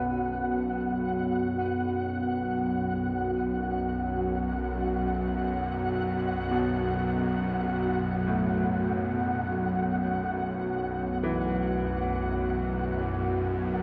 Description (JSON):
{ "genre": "dark ambient drone", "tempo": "free time", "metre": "none", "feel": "none", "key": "unclear", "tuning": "A4 = 440 Hz", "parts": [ { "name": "dark analog pad", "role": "sustained chords", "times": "0.0-13.8 s", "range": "B3 to F#5", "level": "-34 LUFS", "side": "equal", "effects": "chorus" }, { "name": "clear grand piano", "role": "arpeggios", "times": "0.0-13.8 s", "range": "A2 to B4", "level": "-38 LUFS", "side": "equal", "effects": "delay" }, { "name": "bowed-like drone", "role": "drone", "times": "0.0-13.8 s", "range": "B1 to F#2", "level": "-33 LUFS", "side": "equal", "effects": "built-in reverb" }, { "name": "flickering grainy texture", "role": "texture", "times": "0.0-13.8 s", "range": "F#5", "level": "-36 LUFS", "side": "equal", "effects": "built-in reverb" } ], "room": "wet huge ambient reverb, RT60 8.5 s", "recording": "dark, warm production", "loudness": "-29 LUFS", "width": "mono", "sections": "0.0-13.8 A section", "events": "none", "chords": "0.0 B5" }